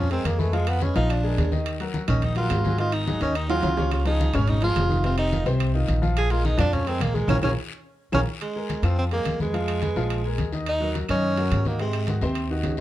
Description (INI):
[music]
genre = Afro-Cuban jazz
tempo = 213 BPM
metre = 4/4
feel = straight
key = Bb minor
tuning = A4 = 441 Hz
[part]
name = clear tenor saxophone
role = melody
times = 0.0-12.2 s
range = Ab3 to Ab4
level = -26 LUFS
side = right 2 dB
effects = plate reverb
[part]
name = clear baby grand piano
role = accompaniment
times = 0.0-12.8 s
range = C3 to F5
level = -29 LUFS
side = left 3 dB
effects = none
[part]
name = upright bass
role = bass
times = 0.0-12.8 s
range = F1 to Ab2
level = -24 LUFS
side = equal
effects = none
[part]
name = congas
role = percussion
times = 0.1-12.8 s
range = none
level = -30 LUFS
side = left 1 dB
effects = none
[part]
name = timbales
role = percussion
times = 0.1-12.8 s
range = none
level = -34 LUFS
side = right 6 dB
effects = none
[part]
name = claves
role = percussion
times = 0.3-12.5 s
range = none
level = -40 LUFS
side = right 2 dB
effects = none
[part]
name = guiro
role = percussion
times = 0.3-12.8 s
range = none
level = -42 LUFS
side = left 7 dB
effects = none
[sound]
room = light reverb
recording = dark, warm production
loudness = -21 LUFS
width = side -14 dB against mid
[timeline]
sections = 0.0-8.4 A section; 8.4-12.8 B section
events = tenor saxophone solo 0.0-8.4; drum fill 3.5-3.9, 7.3-8.4; band accent 7.3-8.4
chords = 0.0 Bb5; 0.5 Fdim; 1.1 Bb7; 1.7 Ebmadd9; 2.8 Ab5; 3.9 Dbadd9; 5.0 F5; 6.2 Bb7(no3); 8.4 Bb5; 9.5 Fdim; 10.1 Bb5; 10.7 Ebm7; 11.8 Ab7